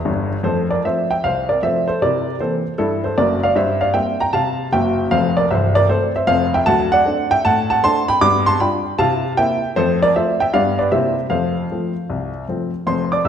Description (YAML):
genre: jazz, stride piano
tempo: 155 BPM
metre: 4/4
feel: swing 66% on 8ths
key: F major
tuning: A4 = 440 Hz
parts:
  - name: warm upright piano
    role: solo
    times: 0.0-13.3 s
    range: C1 to E6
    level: -15 LUFS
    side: equal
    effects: none
room: wet recital hall reverb, RT60 1.4 s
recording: recorded in a church or concert hall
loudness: -15 LUFS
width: side -8 dB against mid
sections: 0.5-12.9 A section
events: upright piano fill 0.0-0.5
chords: 0.5 F; 2.0 C13; 5.1 F; 6.7 D7; 8.2 G7; 9.0 C7; 9.8 F; 10.5 G7; 10.9 C7; 11.3 F